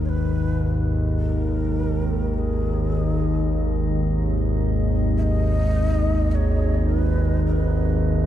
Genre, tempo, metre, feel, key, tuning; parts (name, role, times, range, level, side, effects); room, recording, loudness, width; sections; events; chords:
dark ambient drone; 53 BPM; 4/4; straight; G# minor; A4 = 440 Hz
breathy mellow shakuhachi; melody; 0.0-8.3 s; G#4 to E5; -33 LUFS; left 1 dB; ping-pong delay
dark analog pad; sustained chords; 0.0-8.3 s; G#3 to D#5; -32 LUFS; right 2 dB; wide subtle chorus
analog drone; drone; 0.0-8.3 s; G#1 to D#2; -20 LUFS; equal; chorus
moderate huge ambient reverb, RT60 7.7 s; dark, warm production; -20 LUFS; side -11 dB against mid
0.0-8.3 A section
fade-in on analog synth pad 0.0-8.3; fade-in on shakuhachi 0.0-8.3
0.0 G#5